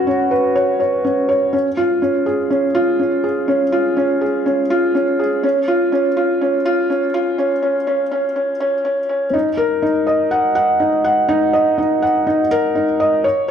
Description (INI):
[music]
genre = electronica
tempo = 123 BPM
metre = 4/4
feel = straight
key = Eb minor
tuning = A4 = 440 Hz
[part]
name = felt-muted upright piano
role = solo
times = 0.0-13.5 s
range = C#4 to Gb5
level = -14 LUFS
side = equal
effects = ping-pong delay
[sound]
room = wet echo chamber reverb, RT60 1.4 s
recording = high-pass filter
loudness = -15 LUFS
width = side -8 dB against mid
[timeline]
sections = 0.0-9.3 A section; 9.3-13.5 B section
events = build-up 0.0-9.3; drop 9.3-13.5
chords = none